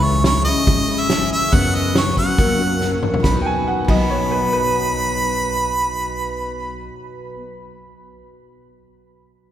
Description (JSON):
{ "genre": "honky-tonk and classic country", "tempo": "140 BPM", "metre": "4/4", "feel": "straight", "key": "B major", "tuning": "A4 = 440 Hz", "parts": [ { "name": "bright harmonica", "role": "melody", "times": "0.0-6.9 s", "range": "C#5 to B5", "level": "-21 LUFS", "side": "right 1 dB", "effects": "none" }, { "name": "picked steel-string acoustic guitar", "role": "accompaniment", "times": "0.0-7.5 s", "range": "F#2 to G#4", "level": "-23 LUFS", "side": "left 3 dB", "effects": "none" }, { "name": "upright bass", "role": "bass", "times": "0.0-6.9 s", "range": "G#1 to F#2", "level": "-24 LUFS", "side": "equal", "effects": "none" }, { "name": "natural country drum kit", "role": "drums", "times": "0.2-4.0 s", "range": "crash cymbal, hi-hat, kick drum, snare drum, toms", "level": "-21 LUFS", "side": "equal", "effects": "none" }, { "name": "bright upright piano", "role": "second line", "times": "3.4-7.5 s", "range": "B4 to G#5", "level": "-25 LUFS", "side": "right 2 dB", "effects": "none" } ], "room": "wet cathedral reverb, RT60 4.9 s", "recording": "recorded in a church or concert hall", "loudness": "-16 LUFS", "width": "side -11 dB against mid", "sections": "0.0-3.2 A section; 3.2-6.7 B section", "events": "drum fill 2.8-3.2", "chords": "0.0 C#m; 1.5 F#sus4; 2.4 F#; 3.2 B", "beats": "0.24 0.67 1.10 | 1.53 1.96 2.38 2.81 | 3.24 3.67 4.10 4.53 | 4.96 5.38 5.81 6.24" }